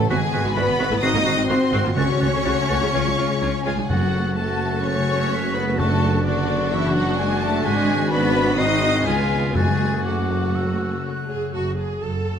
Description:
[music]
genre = classical, dramatic, fast romantic movement for symphony orchestra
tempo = 120-131 BPM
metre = 4/4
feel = rubato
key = F# minor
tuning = A4 = 440 Hz
[part]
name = silver concert flute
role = second line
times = 0.0-11.5 s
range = C#6 to B#6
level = -32 LUFS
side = left 1 dB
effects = none
[part]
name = warm symphonic violin section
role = second line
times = 0.0-11.0 s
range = D4 to D#5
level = -28 LUFS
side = left 3 dB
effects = none
[part]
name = concert harp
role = arpeggios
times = 0.0-12.4 s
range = F#2 to A5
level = -28 LUFS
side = left 9 dB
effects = none
[part]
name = warm symphonic cello section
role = bass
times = 0.0-12.4 s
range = F#2 to D#4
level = -26 LUFS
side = right 1 dB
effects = none
[part]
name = warm symphonic double bass section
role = bass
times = 0.0-12.4 s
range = F#1 to F#2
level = -28 LUFS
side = right 4 dB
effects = none
[part]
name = warm tuba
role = bass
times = 0.0-11.3 s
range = F#1 to C#2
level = -29 LUFS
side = right 4 dB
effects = none
[part]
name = warm symphonic violin section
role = melody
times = 0.1-12.3 s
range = D5 to D#6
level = -28 LUFS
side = left 2 dB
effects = none
[part]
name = clear oboe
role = second line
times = 0.1-11.3 s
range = E#4 to F#4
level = -31 LUFS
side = right 2 dB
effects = none
[part]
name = clear studio viola section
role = accompaniment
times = 0.1-12.4 s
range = F#3 to A4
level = -28 LUFS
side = right 2 dB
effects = none
[part]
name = mellow French horn section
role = sustained chords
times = 0.1-11.7 s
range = G#3 to F#4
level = -28 LUFS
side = left 3 dB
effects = none
[part]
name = timpani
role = percussion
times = 2.0-6.5, 9.5-10.3 s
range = F#2 to C#3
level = -26 LUFS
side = right 1 dB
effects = none
[sound]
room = moderate concert hall reverb, RT60 2.2 s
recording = none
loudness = -18 LUFS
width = side -8 dB against mid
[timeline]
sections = 0.0-11.5 A section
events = none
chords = 0.1 G#m7b5; 1.0 G#7; 2.0 F#m/C#; 2.9 C#; 3.9 F#m; 5.8 Dmaj7/F#; 7.7 G#m7b5; 8.6 G#7; 9.1 C#7; 9.6 F#m

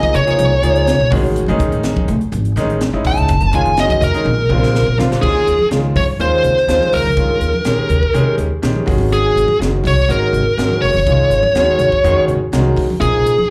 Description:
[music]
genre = electric jazz fusion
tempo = 124 BPM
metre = 4/4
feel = straight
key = unclear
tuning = A4 = 440 Hz
[part]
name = smooth overdriven lead guitar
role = melody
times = 0.0-13.5 s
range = Ab4 to A5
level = -17 LUFS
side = equal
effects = slapback echo
[part]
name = clear baby grand piano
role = accompaniment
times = 0.0-13.3 s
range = D3 to Bb5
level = -22 LUFS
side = equal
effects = slapback echo
[part]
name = crisp fusion drum kit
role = drums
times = 0.0-13.4 s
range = crash cymbal, hi-hat, kick drum, snare drum, toms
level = -25 LUFS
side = equal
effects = none
[part]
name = congas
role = percussion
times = 0.0-13.5 s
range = none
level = -26 LUFS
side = equal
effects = none
[part]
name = upright bass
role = bass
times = 0.1-13.4 s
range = F#1 to C#3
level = -20 LUFS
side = equal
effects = none
[sound]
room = light reverb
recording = live gig heard through the venue's PA, club reverb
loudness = -15 LUFS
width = mono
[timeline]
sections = 0.0-5.2 A section; 5.2-13.5 B section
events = lead electric guitar solo 0.0-5.2; drum fill 4.3-5.2; grand piano fill 12.3-13.0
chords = 0.0 C#maj9; 1.1 Amaj7; 3.3 F#sus2; 4.3 A#add9; 5.2 Eb9sus4; 8.9 Ab7sus4

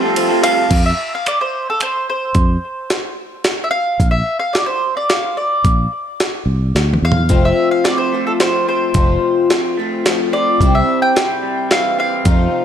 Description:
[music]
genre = folk rock and heartland rock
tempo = 109 BPM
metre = 3/4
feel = straight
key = F major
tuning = A4 = 440 Hz
[part]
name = mandolin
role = melody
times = 0.0-12.6 s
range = A4 to G5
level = -18 LUFS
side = right 1 dB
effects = analog delay
[part]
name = picked twelve-string acoustic guitar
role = accompaniment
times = 0.0-0.7, 7.3-12.6 s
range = F2 to G4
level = -19 LUFS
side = left 6 dB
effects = none
[part]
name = mellow tonewheel organ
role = sustained chords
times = 0.0-0.7 s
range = G4 to A5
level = -25 LUFS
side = right 1 dB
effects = slow rotary speaker
[part]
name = electric guitar through a small old amp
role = riff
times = 0.0-0.7, 7.3-12.6 s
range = F2 to A4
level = -21 LUFS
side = right 4 dB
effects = wide subtle chorus
[part]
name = jungle sampler-style drum kit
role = drums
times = 0.2-12.4 s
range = crash cymbal, finger snaps, hi-hat, kick drum, ride cymbal, snare drum, toms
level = -18 LUFS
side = equal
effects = none
[part]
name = fingered electric bass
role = bass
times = 0.7-12.5 s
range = F1 to F2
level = -16 LUFS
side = equal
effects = none
[sound]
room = light reverb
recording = none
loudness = -14 LUFS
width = side -9 dB against mid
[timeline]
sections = 0.7-12.6 A section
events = break 0.0-0.7; drum fill 6.8-7.3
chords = 0.0 Fadd9; 0.7 F5; 4.0 Bb; 7.3 F; 10.6 C

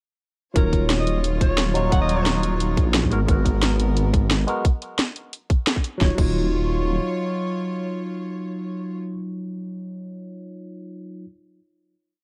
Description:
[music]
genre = liquid drum and bass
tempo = 176 BPM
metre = 4/4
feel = swing 54% on 16ths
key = Eb minor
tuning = A4 = 438 Hz
[part]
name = barky tine electric piano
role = accompaniment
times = 0.5-11.3 s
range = Gb3 to Db5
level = -29 LUFS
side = equal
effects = overdrive, phaser, delay
[part]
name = breathy alto saxophone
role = melody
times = 0.6-2.3 s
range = Bb4 to Gb5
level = -32 LUFS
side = equal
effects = delay
[part]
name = rich chamber string section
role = sustained chords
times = 0.6-9.0 s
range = Gb3 to Db5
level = -35 LUFS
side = equal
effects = none
[part]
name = dark detuned saw bass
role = bass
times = 0.6-7.0 s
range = Eb1 to Bb1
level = -25 LUFS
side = equal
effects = none
[part]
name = drum and bass drum kit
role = drums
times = 0.6-6.3 s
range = crash cymbal, hi-hat, snare drum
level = -27 LUFS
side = equal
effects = none
[part]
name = electronic kick drum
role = drums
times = 0.6-6.3 s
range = none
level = -22 LUFS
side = equal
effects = none
[sound]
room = little or no reverb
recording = dark, warm production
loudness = -22 LUFS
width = mono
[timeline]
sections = 0.6-6.0 drop; 6.0-8.7 final chord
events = drop 0.6-6.0; band accent 5.7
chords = 0.6 Ebm9; 3.1 Abm9; 6.0 Ebm9

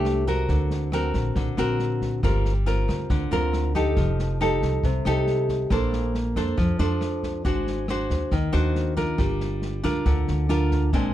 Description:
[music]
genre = bossa nova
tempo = 138 BPM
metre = 4/4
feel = straight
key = unclear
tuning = A4 = 440 Hz
[part]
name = nylon-string guitar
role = accompaniment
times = 0.0-11.1 s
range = Bb2 to C5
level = -25 LUFS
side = equal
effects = none
[part]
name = upright bass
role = bass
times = 0.0-11.1 s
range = F1 to F2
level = -25 LUFS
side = equal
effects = none
[part]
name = open jazz drum kit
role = drums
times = 0.1-11.0 s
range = kick drum, rim click, snare drum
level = -30 LUFS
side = equal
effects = none
[sound]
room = little or no reverb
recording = dark, warm production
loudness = -21 LUFS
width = side -12 dB against mid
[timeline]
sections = 0.0-11.1 A section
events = none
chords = 0.5 Daug7; 2.2 Gm11; 4.0 F9; 5.7 Bbmaj9; 7.5 Ab7#11; 9.2 Gm7

